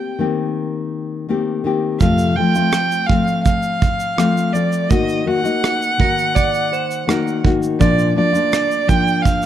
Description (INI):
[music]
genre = acoustic pop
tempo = 83 BPM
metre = 4/4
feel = straight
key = unclear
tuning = A4 = 440 Hz
[part]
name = rich violin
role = melody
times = 0.0-9.5 s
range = D5 to G5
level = -20 LUFS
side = right 2 dB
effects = none
[part]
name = nylon-string guitar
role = accompaniment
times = 0.0-9.5 s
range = F2 to G4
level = -18 LUFS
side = left 3 dB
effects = none
[part]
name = modern studio drum kit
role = drums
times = 2.0-9.5 s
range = kick drum, rim click, shaker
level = -19 LUFS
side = right 3 dB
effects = none
[part]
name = clean electric guitar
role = second line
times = 6.0-7.6 s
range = Bb4 to D5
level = -24 LUFS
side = right 4 dB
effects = none
[sound]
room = light reverb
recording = dark, warm production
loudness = -15 LUFS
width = side -10 dB against mid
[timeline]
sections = 0.0-9.5 A section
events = none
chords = 0.0 Cm7; 2.0 F; 4.9 Ebm; 7.8 Bb